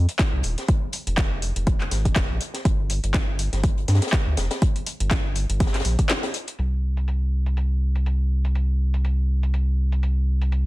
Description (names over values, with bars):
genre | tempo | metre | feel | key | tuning
deep house | 122 BPM | 4/4 | swing 56% on 16ths | unclear | A4 = 440 Hz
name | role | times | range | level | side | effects
round analog bass | bass | 0.0-10.7 s | Eb1 to G2 | -22 LUFS | equal | tube saturation, sidechain pumping
deep house drum kit | drums | 0.1-10.6 s | handclaps, hi-hat | -28 LUFS | left 1 dB | overdrive, low-pass filter on hats, low-pass filter on snare, low-pass filter on room
open jazz drum kit | drums | 0.1-6.6 s | hi-hat, snare drum | -32 LUFS | left 2 dB | high-pass filter on hats, high-pass filter on snare, high-pass filter on room
electronic kick drum | drums | 0.2-6.1 s | none | -22 LUFS | equal | overdrive
room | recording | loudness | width
little or no reverb | dense, heavily limited modern master | -20 LUFS | side -19 dB against mid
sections
0.0-6.6 A section; 6.6-10.7 B section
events
break 6.1-6.6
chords
none